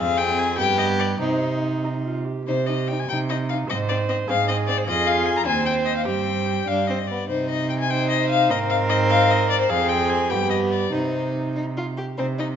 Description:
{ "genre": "quick classical-period movement for string quartet", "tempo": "94-102 BPM (dotted quarters)", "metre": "6/8", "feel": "rubato", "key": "C minor", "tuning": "A4 = 439 Hz", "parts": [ { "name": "rich violin", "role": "melody", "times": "0.0-12.5 s", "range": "C5 to Bb5", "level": "-24 LUFS", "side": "left 6 dB", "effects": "none" }, { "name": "rich violin", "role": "second line", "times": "0.0-12.5 s", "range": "B3 to Ab4", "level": "-26 LUFS", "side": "left 1 dB", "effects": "none" }, { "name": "warm viola", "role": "accompaniment", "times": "0.0-12.5 s", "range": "B3 to C5", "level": "-27 LUFS", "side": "right 4 dB", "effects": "none" }, { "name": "dark cello", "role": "bass", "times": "0.0-12.6 s", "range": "Eb2 to C3", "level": "-26 LUFS", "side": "right 4 dB", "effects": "none" } ], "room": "wet recital hall reverb, RT60 1.4 s", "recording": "nothing above 7.7 kHz", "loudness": "-20 LUFS", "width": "side -8 dB against mid", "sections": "0.0-2.5 A section; 2.5-12.2 A section", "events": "none", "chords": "0.0 Fm; 0.6 G; 1.2 Cm; 3.7 Ab; 4.9 Fm; 5.5 Cm/Eb; 6.1 C5/G; 7.3 Cm; 8.5 Ab; 9.7 Fm; 10.3 G; 10.9 Cm" }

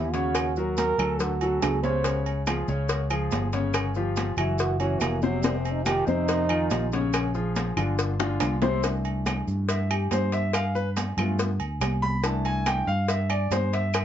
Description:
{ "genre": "Afro-Cuban jazz", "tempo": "141 BPM", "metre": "4/4", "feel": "straight", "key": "C major from 8.8 s", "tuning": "A4 = 439 Hz", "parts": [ { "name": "breathy trombone", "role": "second line", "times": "0.0-7.1 s", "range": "Gb3 to C5", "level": "-28 LUFS", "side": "right 4 dB", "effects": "none" }, { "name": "warm grand piano", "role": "accompaniment", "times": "0.0-14.0 s", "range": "C3 to B5", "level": "-28 LUFS", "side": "left 3 dB", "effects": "none" }, { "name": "fingered electric bass", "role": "bass", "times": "0.0-14.0 s", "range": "F1 to G2", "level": "-28 LUFS", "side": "equal", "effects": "none" }, { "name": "cowbell and bongos", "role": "percussion", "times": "0.1-14.0 s", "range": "none", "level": "-32 LUFS", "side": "left 4 dB", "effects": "none" }, { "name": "maracas", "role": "percussion", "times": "0.1-14.0 s", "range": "none", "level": "-42 LUFS", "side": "right 9 dB", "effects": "none" }, { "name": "agogo bells and timbales", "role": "percussion", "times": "0.4-14.0 s", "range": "none", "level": "-33 LUFS", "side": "right 6 dB", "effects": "none" }, { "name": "claves", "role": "percussion", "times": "0.4-14.0 s", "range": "none", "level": "-35 LUFS", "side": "left 3 dB", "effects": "none" }, { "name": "congas", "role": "percussion", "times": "0.4-14.0 s", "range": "none", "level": "-35 LUFS", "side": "left 2 dB", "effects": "none" } ], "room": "light reverb", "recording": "nothing above 7.6 kHz", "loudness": "-23 LUFS", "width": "side -10 dB against mid", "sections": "0.0-8.8 A section; 8.8-14.0 A section", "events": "trombone solo 0.0-8.8; drum fill 1.6-2.1, 8.2-8.8; grand piano solo 8.8-14.0", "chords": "0.4 Ebm7; 1.2 D; 2.1 Db; 3.7 Em69; 4.6 Gb7#11; 5.4 F5; 7.1 Bbm7; 8.0 G5; 8.8 C69; 10.5 G7; 12.2 C69" }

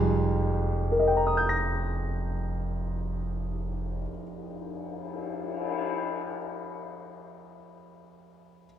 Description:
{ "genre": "jazz ballad", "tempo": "34 BPM", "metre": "4/4", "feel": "swing 68% on 8ths", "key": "F minor", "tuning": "A4 = 440 Hz", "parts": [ { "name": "dark concert grand piano", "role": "accompaniment", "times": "0.0-8.7 s", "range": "F2 to Bb6", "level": "-29 LUFS", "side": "equal", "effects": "none" }, { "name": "upright bass", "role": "bass", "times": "0.0-4.0 s", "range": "F1", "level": "-30 LUFS", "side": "equal", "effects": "none" }, { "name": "cymbal swell", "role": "drums", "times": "0.4-5.8 s", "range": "none", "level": "-37 LUFS", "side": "left 7 dB", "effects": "none" } ], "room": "moderate concert hall reverb, RT60 2.3 s", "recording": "minimal, uncompressed stereo recording", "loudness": "-27 LUFS", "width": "side -10 dB against mid", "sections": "0.0-6.1 A section", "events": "none", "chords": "0.0 Fm9" }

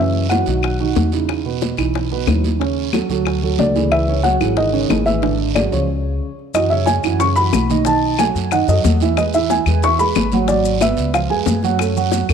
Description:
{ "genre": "Afro-Cuban jazz", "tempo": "183 BPM", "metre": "4/4", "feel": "straight", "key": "unclear", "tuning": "A4 = 440 Hz", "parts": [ { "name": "felt-muted upright piano", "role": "melody", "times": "0.0-0.9, 3.6-11.6 s", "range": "C#5 to C#6", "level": "-19 LUFS", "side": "left 1 dB", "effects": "none" }, { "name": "dark trombone", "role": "second line", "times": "0.0-0.9, 3.6-6.3 s", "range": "C#3 to F#3", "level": "-25 LUFS", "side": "left 9 dB", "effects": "none" }, { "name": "dark grand piano", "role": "accompaniment", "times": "0.0-12.3 s", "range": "B2 to F#5", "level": "-20 LUFS", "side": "right 12 dB", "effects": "none" }, { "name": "upright bass", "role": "bass", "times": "0.0-12.3 s", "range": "G#1 to F#2", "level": "-20 LUFS", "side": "left 1 dB", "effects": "none" }, { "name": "congas", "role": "percussion", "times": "0.1-12.3 s", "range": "none", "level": "-24 LUFS", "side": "left 3 dB", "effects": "none" }, { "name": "bongos", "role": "percussion", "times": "0.3-12.3 s", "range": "none", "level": "-25 LUFS", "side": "left 14 dB", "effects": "none" }, { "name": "claves", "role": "percussion", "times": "0.3-12.3 s", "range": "none", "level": "-29 LUFS", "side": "left 12 dB", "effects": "none" }, { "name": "guiro", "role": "percussion", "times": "0.3-12.3 s", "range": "none", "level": "-32 LUFS", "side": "right 12 dB", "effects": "none" }, { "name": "maracas", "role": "percussion", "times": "6.5-12.3 s", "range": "none", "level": "-33 LUFS", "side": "left 15 dB", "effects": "none" } ], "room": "light reverb", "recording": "1960s-style stereo with parts hard left and right", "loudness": "-15 LUFS", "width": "side -7 dB against mid", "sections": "0.0-6.5 A section; 6.5-12.3 B section", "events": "stop 5.9-6.5", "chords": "0.0 Badd9; 2.6 D#m7b5; 3.3 D; 3.9 C#madd9; 5.2 E13b9/G#; 5.9 N.C.; 6.5 F#sus2; 7.9 B7; 9.2 E; 10.5 G#m7b5; 11.1 C#7; 11.8 F#m" }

